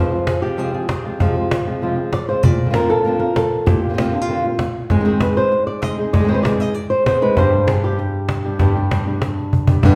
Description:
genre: flamenco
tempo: 194 BPM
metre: 4/4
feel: straight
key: unclear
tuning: A4 = 440 Hz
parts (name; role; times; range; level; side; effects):
- flamenco guitar; melody; 0.0-10.0 s; G2 to Eb5; -21 LUFS; equal; none
- flamenco guitar; stabs; 0.0-9.9 s; F2 to Ab4; -25 LUFS; equal; none
- cajon; percussion; 0.1-10.0 s; none; -22 LUFS; equal; none
room: wet large studio reverb, RT60 1.3 s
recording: band playing live in one room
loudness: -18 LUFS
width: mono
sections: 0.0-9.8 A section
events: drum fill 9.2-9.8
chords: 0.0 Fm; 2.4 Bbadd9; 4.9 Ab; 7.4 G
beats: 0.27 0.58 0.89 | 1.20 1.51 1.82 2.13 | 2.44 2.74 3.05 3.36 | 3.67 3.98 4.29 4.60 | 4.91 5.21 5.52 5.83 | 6.14 6.45 6.76 7.07 | 7.37 7.68 7.99 8.30 | 8.61 8.91 9.22 9.53 | 9.84

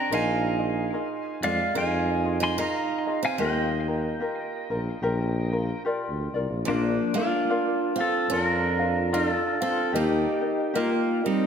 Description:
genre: Hawaiian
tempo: 73 BPM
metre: 4/4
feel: swing 59% on 8ths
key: Eb major, Bb major from 6.7 s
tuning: A4 = 439 Hz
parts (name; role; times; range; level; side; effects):
- pedal steel guitar; melody; 0.0-11.5 s; Bb3 to C6; -26 LUFS; left 1 dB; ping-pong delay
- picked steel-string acoustic guitar; second line; 0.0-11.5 s; F3 to Eb4; -31 LUFS; right 6 dB; none
- ukulele; accompaniment; 0.0-11.5 s; C4 to F5; -31 LUFS; left 2 dB; none
- mellow tuba; bass; 0.1-10.3 s; Bb1 to F2; -29 LUFS; equal; none
room: moderate concert hall reverb, RT60 1.8 s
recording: none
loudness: -23 LUFS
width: side -7 dB against mid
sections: 0.0-6.7 A section; 6.7-11.5 B section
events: none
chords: 0.1 Bb7sus4; 3.4 Ebmaj9; 6.7 Bb; 9.9 Eb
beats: | 0.11 0.93 1.75 2.57 | 3.39 4.21 5.03 5.85 | 6.67 7.49 8.30 9.12 | 9.94 10.76

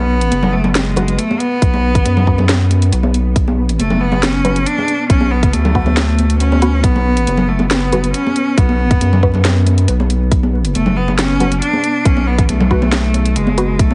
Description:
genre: deep dubstep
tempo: 138 BPM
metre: 4/4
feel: half-time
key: B dorian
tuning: A4 = 440 Hz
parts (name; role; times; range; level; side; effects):
- clear cello; melody; 0.0-13.9 s; G#3 to D4; -22 LUFS; equal; dub echo
- deep dark ambient pad; sustained chords; 1.3-13.9 s; B3; -28 LUFS; equal; none
- saturated sub bass; bass; 0.0-13.9 s; F#1 to F#2; -18 LUFS; equal; none
- garage drum kit; drums; 0.2-13.9 s; hi-hat, snare drum; -22 LUFS; equal; overdrive
- congas; percussion; 0.3-13.9 s; none; -22 LUFS; equal; none
- filtered dub chord stab; stabs; 1.0-13.8 s; B3 to B4; -25 LUFS; equal; phaser, lush chorus, dub echo
- electronic kick drum; drums; 1.6-13.9 s; none; -16 LUFS; equal; overdrive
room: light reverb, digital ambience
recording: heavily compressed radio sound, vinyl crackle, nothing above 10.5 kHz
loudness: -14 LUFS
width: mono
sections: 0.0-13.9 A section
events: none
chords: 0.0 B5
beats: 0.32 0.75 1.19 | 1.62 2.06 2.49 2.92 | 3.36 3.79 4.23 4.66 | 5.10 5.53 5.97 6.40 | 6.84 7.27 7.71 8.14 | 8.58 9.01 9.45 9.88 | 10.32 10.75 11.19 11.62 | 12.06 12.49 12.93 13.36 | 13.79

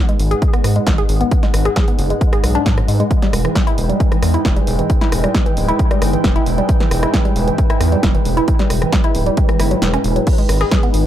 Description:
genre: driving peak-time techno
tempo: 134 BPM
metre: 4/4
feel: straight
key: unclear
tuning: A4 = 436 Hz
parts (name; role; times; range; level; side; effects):
- deep dark ambient pad; drone; 0.1-11.1 s; G#2 to G#3; -23 LUFS; left 1 dB; chorus, built-in reverb, sidechain pumping
- airy breathy pad; texture; 0.0-11.1 s; D#4 to G#5; -25 LUFS; right 3 dB; chorus, sidechain pumping
- woody wave-folded pluck; riff; 0.1-10.9 s; E3 to G#4; -21 LUFS; equal; chorus, sidechain pumping, analog delay
- punchy analog drum machine; drums; 0.1-11.0 s; crash cymbal, hi-hat, rim click, snare drum; -22 LUFS; equal; overdrive, sidechain pumping on hats, sidechain pumping on cymbals
- gritty driven synth bass; bass; 0.2-11.1 s; D1 to G#2; -18 LUFS; equal; sidechain pumping
- electronic kick drum; drums; 0.4-10.8 s; none; -16 LUFS; equal; overdrive
room: little or no reverb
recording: echo-heavy mix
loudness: -13 LUFS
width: side -11 dB against mid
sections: 0.0-10.3 A section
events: fade-in on analog synth pad 0.0-10.3; kick drops out 9.8-10.3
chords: 0.0 G#m; 3.1 Em; 10.3 G#m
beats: 0.42 0.87 | 1.31 1.76 2.21 2.66 | 3.11 3.55 4.00 4.45 | 4.90 5.34 5.79 6.24 | 6.69 7.14 7.58 8.03 | 8.48 8.93 9.38 9.82 | 10.27 10.72

